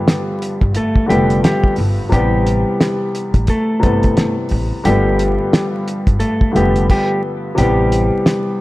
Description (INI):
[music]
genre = hip hop, boom-bap hip-hop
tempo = 88 BPM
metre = 4/4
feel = swing 59% on 16ths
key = A minor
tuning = A4 = 442 Hz
[part]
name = mellow electric guitar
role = melody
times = 0.0-8.6 s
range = G3 to A4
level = -19 LUFS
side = equal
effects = spring reverb, high-pass filter, low-pass filter
[part]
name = dark baby grand piano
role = accompaniment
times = 0.0-8.6 s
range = G2 to B3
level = -19 LUFS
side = left 1 dB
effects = cassette tape, high-pass filter, low-pass filter
[part]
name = cloth-damped thuddy drum kit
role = drums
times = 0.1-8.4 s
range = crash cymbal, hi-hat, kick drum, snare drum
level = -16 LUFS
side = equal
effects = none
[part]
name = upright bass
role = bass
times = 0.6-8.1 s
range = F1 to A1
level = -18 LUFS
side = equal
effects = none
[sound]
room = small room ambience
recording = vinyl crackle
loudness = -13 LUFS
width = side -18 dB against mid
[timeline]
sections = 0.0-7.6 A section; 7.6-8.6 B section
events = stop 6.9-7.6; kick muted 7.6-8.6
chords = 0.0 G7; 2.1 Am7; 4.9 G7; 7.6 Am7